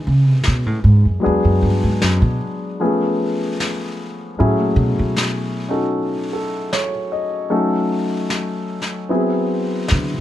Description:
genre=jazz ballad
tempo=76 BPM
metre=4/4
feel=swing 66% on 8ths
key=C# minor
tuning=A4 = 439 Hz
part: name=warm grand piano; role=accompaniment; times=0.0-10.2 s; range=E3 to D#5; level=-20 LUFS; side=left 1 dB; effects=none
part: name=upright bass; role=bass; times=0.0-10.2 s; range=E2 to D3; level=-16 LUFS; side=right 1 dB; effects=none
part: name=snare drum and brushed snare drum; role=drums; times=0.4-10.2 s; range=none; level=-26 LUFS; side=left 1 dB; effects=none
room=little or no reverb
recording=close, detailed microphones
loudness=-16 LUFS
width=side -13 dB against mid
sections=0.0-10.2 A section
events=upright bass solo 0.0-10.2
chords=0.0 C#m7; 1.2 G#m7b5; 2.8 C#7b13; 4.4 F#m9; 7.5 D#m7b5; 9.1 G#7alt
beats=0.44 | 1.23 2.02 2.81 3.59 | 4.38 5.16 5.95 6.73 | 7.52 8.31 9.10 9.90

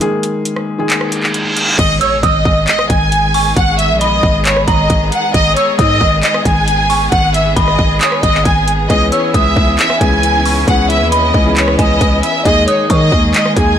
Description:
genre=hip hop, trap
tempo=135 BPM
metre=4/4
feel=half-time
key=G# minor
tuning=A4 = 440 Hz
part: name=felt-muted upright piano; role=accompaniment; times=0.0-1.8, 8.9-13.8 s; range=D#3 to G#4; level=-18 LUFS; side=left 2 dB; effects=none
part: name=trap drum kit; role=drums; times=0.0-13.7 s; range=crash cymbal, handclaps, hi-hat, kick drum, rim click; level=-16 LUFS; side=equal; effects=none
part: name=reverse cymbal and impact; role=sound effects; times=1.1-3.6 s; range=none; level=-18 LUFS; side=right 1 dB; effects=none
part: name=warm studio violin section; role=melody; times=1.8-13.8 s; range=C#5 to G#5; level=-14 LUFS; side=equal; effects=tape echo
part: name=bright studio string section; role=sustained chords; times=1.8-13.8 s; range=D#3 to B4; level=-21 LUFS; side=equal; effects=none
part: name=growling 808-style bass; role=bass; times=1.8-13.8 s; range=G#1 to D#3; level=-16 LUFS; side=equal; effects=none
part: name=dark detuned synth bell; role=second line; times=2.0-13.3 s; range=G#5 to E6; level=-20 LUFS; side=right 3 dB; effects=chorus, phaser, tape echo
room=light reverb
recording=blown-out, overdriven recording, overdrive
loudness=-10 LUFS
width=side -9 dB against mid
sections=0.0-1.8 A section; 1.8-13.8 B section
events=break 0.0-1.8; reverse cymbal 1.1-1.8; impact 1.8-3.6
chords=0.0 D#sus4; 1.8 G#m; 8.9 C#m7; 12.5 D#sus4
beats=| 0.01 0.46 0.90 1.34 | 1.79 2.23 2.68 3.12 | 3.57 4.01 4.46 4.90 | 5.34 5.79 6.23 6.68 | 7.12 7.57 8.01 8.46 | 8.90 9.34 9.79 10.23 | 10.68 11.12 11.57 12.01 | 12.46 12.90 13.34

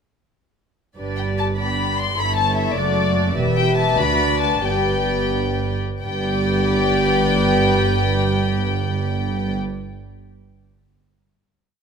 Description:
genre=quick classical-period movement for string orchestra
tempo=83-102 BPM (dotted quarters)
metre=6/8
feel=rubato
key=G major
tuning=A4 = 436 Hz
part: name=rich studio violin section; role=second line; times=1.0-9.5 s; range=G4 to E5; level=-25 LUFS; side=left 2 dB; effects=none
part: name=rich studio viola section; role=accompaniment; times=1.0-9.5 s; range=A3 to G4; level=-24 LUFS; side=right 1 dB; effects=none
part: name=warm studio cello section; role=bass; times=1.0-9.5 s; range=D2 to G2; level=-25 LUFS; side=right 4 dB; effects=none
part: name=warm studio double bass section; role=bass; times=1.0-9.5 s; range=E1 to D2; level=-25 LUFS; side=right 3 dB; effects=none
part: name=warm studio violin section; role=melody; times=1.2-9.5 s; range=D5 to C6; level=-23 LUFS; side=left 6 dB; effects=none
room=moderate scoring stage reverb, RT60 1.8 s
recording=none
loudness=-17 LUFS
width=side -6 dB against mid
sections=1.0-6.0 A section; 6.0-8.8 final chord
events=slowing down 2.8-6.0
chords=1.0 G; 2.2 A7/G; 2.8 D/F#; 3.4 Em; 4.0 D; 4.6 G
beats=| 0.97 1.58 | 2.17 2.76 | 3.36 3.98 | 4.63 5.32 | 6.02 6.71 | 7.40 8.08

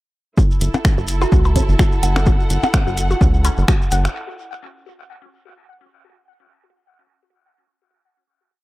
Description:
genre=minimal techno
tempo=127 BPM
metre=4/4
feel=swing 56% on 16ths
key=F# minor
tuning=A4 = 440 Hz
part: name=resonant blip pluck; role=riff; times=0.4-4.0 s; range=C#4 to F#5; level=-26 LUFS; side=left 1 dB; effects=phaser, sidechain pumping, analog delay
part: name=electronic kick drum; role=drums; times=0.4-3.8 s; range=none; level=-16 LUFS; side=equal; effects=none
part: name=shekere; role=percussion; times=0.4-4.1 s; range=none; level=-34 LUFS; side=right 1 dB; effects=none
part: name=dark studio string section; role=texture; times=0.4-4.2 s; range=E4 to F#5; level=-28 LUFS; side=equal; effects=sidechain pumping
part: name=rubbery square bass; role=bass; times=0.6-4.1 s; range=F#1 to C#2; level=-17 LUFS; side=equal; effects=sidechain pumping
part: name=garage drum kit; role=drums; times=0.6-4.1 s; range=finger snaps, hi-hat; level=-26 LUFS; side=equal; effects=high-pass filter on hats, high-pass filter on snare, dub echo
part: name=percussion blips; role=percussion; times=0.7-3.6 s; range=none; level=-25 LUFS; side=left 4 dB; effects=overdrive, analog delay
part: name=glassy wavetable pluck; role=melody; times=1.2-1.9 s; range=F#4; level=-29 LUFS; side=right 5 dB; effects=chorus, dub echo
room=light reverb, digital ambience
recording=echo-heavy mix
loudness=-14 LUFS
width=side -18 dB against mid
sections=0.4-4.2 build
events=build-up 0.4-4.2; filter sweep on synth arpeggio sound 0.4-4.2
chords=0.4 F#m7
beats=| 0.38 0.85 1.32 1.79 | 2.27 2.74 3.21 3.68

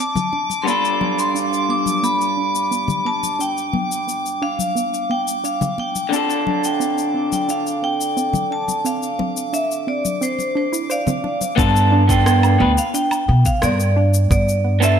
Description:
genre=sunset chillout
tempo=88 BPM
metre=4/4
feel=straight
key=unclear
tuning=A4 = 439 Hz
part: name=vibraphone with hard mallets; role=melody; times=0.0-15.0 s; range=C5 to D6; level=-21 LUFS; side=equal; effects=ping-pong delay
part: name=electric guitar through a small old amp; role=accompaniment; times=0.0-15.0 s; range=G2 to B4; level=-23 LUFS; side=moving between left 6 dB and right 6 dB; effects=auto-pan, low-pass filter
part: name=soft round pluck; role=arpeggios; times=0.0-14.7 s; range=B3 to C5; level=-26 LUFS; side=right 3 dB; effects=chorus, ping-pong delay
part: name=electronic cabasa, rim click and woodblock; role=drums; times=0.0-15.0 s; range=none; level=-27 LUFS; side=left 4 dB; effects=low-pass filter on perc, studio reverb, low-pass filter on snare, gated reverb
part: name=drifting glass-harmonics texture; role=texture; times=0.0-11.6 s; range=D6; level=-30 LUFS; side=equal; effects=chorus, built-in reverb
part: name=congas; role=percussion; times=0.2-11.5 s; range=none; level=-26 LUFS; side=left 5 dB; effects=none
part: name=upright bass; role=bass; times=11.6-15.0 s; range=D2 to B2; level=-16 LUFS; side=equal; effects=none
part: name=electronic kick drum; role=drums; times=11.6-14.4 s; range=none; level=-20 LUFS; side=equal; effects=studio reverb
room=moderate lush hall reverb, RT60 1.7 s, small room reverb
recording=bright 1980s-style digital production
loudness=-16 LUFS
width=side -8 dB against mid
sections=0.0-11.6 A section; 11.6-15.0 B section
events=filter sweep on synth pluck 0.0-11.6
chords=0.0 Dm9; 0.7 G7; 6.1 Dm7; 11.6 G7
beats=| 0.67 1.35 2.03 2.71 | 3.40 4.08 4.76 5.44 | 6.12 6.81 7.49 8.17 | 8.85 9.53 10.21 10.90 | 11.58 12.26 12.94 13.62 | 14.31 14.99

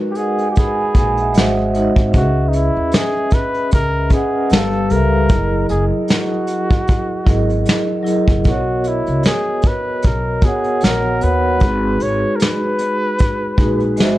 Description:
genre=lo-fi hip hop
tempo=76 BPM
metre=4/4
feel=swing 56% on 16ths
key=unclear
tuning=A4 = 440 Hz
part: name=vibraphone with soft mallets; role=accompaniment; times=0.0-14.2 s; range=F#3 to B5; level=-19 LUFS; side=equal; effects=cassette tape
part: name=trumpet with bucket mute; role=melody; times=0.1-14.0 s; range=D#4 to C#5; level=-21 LUFS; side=equal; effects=tape echo
part: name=vintage brush drum kit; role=drums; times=0.1-14.2 s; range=hi-hat, kick drum, snare drum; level=-15 LUFS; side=equal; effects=vintage 12-bit sampler grit
part: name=upright bass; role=bass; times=1.0-14.2 s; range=F#1 to D#2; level=-20 LUFS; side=equal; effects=none
room=moderate studio reverb, RT60 0.6 s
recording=cassette tape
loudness=-14 LUFS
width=side -16 dB against mid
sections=0.0-14.2 A section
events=none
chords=0.0 G#m7; 1.4 G#7b13; 2.1 C#m7; 4.5 G9; 5.3 F#13; 8.5 Bmaj7; 11.6 G#m7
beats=0.56 1.35 | 2.14 2.93 3.72 4.51 | 5.30 6.09 6.88 7.67 | 8.46 9.25 10.04 10.83 | 11.62 12.40 13.20 13.98

